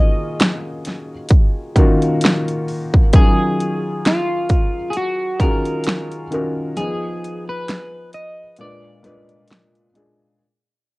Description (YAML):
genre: lo-fi hip hop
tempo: 66 BPM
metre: 4/4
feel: swing 57% on 16ths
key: Eb minor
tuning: A4 = 440 Hz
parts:
  - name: electric guitar at the edge of break-up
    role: melody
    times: 0.0-9.5 s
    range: F4 to Eb5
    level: -24 LUFS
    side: equal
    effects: analog chorus, low-pass filter, analog delay, plate reverb
  - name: felt-muted upright piano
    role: accompaniment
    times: 0.0-10.4 s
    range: Bb2 to F5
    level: -22 LUFS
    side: left 1 dB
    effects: low-pass filter, plate reverb
  - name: dubstep drum kit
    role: drums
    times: 0.4-10.2 s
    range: finger snaps, hi-hat, kick drum, snare drum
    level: -14 LUFS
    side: equal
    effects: vintage 12-bit sampler grit
room: light reverb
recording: worn, warbling old tape, cassette tape, warbly pitch drift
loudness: -15 LUFS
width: side -23 dB against mid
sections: 0.0-3.1 A section; 3.1-10.4 B section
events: fade-out 3.1-10.4; break 6.8-10.4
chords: 0.0 Ebm11; 6.8 Fm7b5; 8.6 Bb7b9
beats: 0.40 1.31 2.22 | 3.12 4.04 4.94 5.85 | 6.76 7.67 8.58 9.49